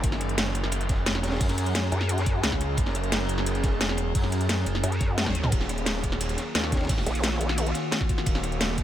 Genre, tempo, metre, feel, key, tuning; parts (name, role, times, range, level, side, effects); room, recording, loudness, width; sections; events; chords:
dark technical drum and bass; 175 BPM; 4/4; straight; Eb minor; A4 = 440 Hz
metallic inharmonic drone; sustained chords; 0.0-8.8 s; Eb3 to Bb4; -32 LUFS; equal; chorus, built-in reverb, sidechain pumping
vowel-sweep wobble bass; bass; 0.0-2.4, 4.8-7.7 s; Bb1 to Gb2; -26 LUFS; equal; chorus, tube saturation
wide detuned saw bass; bass; 0.0-8.8 s; Eb1 to Gb2; -28 LUFS; equal; chorus, tube saturation, sidechain pumping
crunchy breakbeat drum kit; drums; 0.0-8.8 s; hi-hat, ride cymbal, snare drum; -36 LUFS; equal; high-pass filter on cymbals, high-pass filter on hats, high-pass filter on snare, high-pass filter on room
drum and bass drum kit; drums; 0.0-8.8 s; hi-hat, ride cymbal, snare drum, toms; -29 LUFS; equal
electronic kick drum; drums; 0.0-8.8 s; -26 LUFS; equal
little or no reverb; -23 LUFS; side -12 dB against mid
0.0-5.5 A section; 5.5-8.8 A section
drop 0.0-5.5, 5.5-8.8; drum fill 5.2-5.5; band accent 5.2
0.0 Gb; 5.5 Ebm